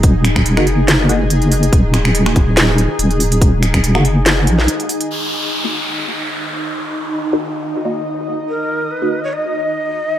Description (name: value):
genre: deep dubstep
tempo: 142 BPM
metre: 4/4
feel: swing 54% on 16ths, half-time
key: Eb minor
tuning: A4 = 438 Hz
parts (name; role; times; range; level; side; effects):
- granular cloud pad; sustained chords; 0.0-10.2 s; Eb4 to Eb5; -21 LUFS; left 1 dB; built-in reverb
- deep soft wobble bass; bass; 0.0-4.7 s; Eb1 to Bb1; -14 LUFS; equal; chorus
- electronic kick drum; drums; 0.0-3.8 s; none; -13 LUFS; equal; none
- garage drum kit; drums; 0.0-5.1 s; finger snaps, hi-hat, snare drum; -17 LUFS; equal; low-pass filter on hats, low-pass filter on snare, low-pass filter on room
- filtered dub chord stab; stabs; 0.6-9.2 s; Bb3 to Gb4; -22 LUFS; equal; phaser, analog chorus, dub echo
- downlifter; sound effects; 5.1-8.5 s; none; -23 LUFS; equal; none
- breathy shakuhachi; melody; 8.5-10.2 s; Bb4 to Eb5; -19 LUFS; equal; vintage 12-bit sampler grit, dub echo
room: light reverb, digital ambience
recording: none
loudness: -13 LUFS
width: side -11 dB against mid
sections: 0.0-5.1 A section; 5.1-10.2 B section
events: break 4.7-5.1; filter sweep on synth stab 5.1-10.2; filter sweep on ambient pad 5.1-10.2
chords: 0.0 Ebm; 5.1 N.C.